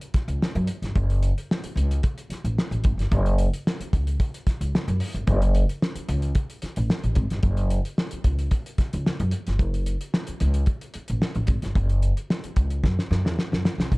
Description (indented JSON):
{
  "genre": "funk",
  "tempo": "111 BPM",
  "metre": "4/4",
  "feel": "straight",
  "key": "unclear",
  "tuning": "A4 = 440 Hz",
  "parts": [
    { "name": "cloth-damped thuddy drum kit", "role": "drums", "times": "0.0-14.0 s", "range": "hi-hat, kick drum, snare drum", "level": "-25 LUFS", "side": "equal", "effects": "none" },
    { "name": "upright bass", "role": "bass", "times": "0.1-14.0 s", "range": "F#1 to F#2", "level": "-23 LUFS", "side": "equal", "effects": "none" }
  ],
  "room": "little or no reverb",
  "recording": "dark, warm production",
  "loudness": "-22 LUFS",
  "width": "side -26 dB against mid",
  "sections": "0.0-13.9 A section",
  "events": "drum fill 12.8-13.9",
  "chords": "none"
}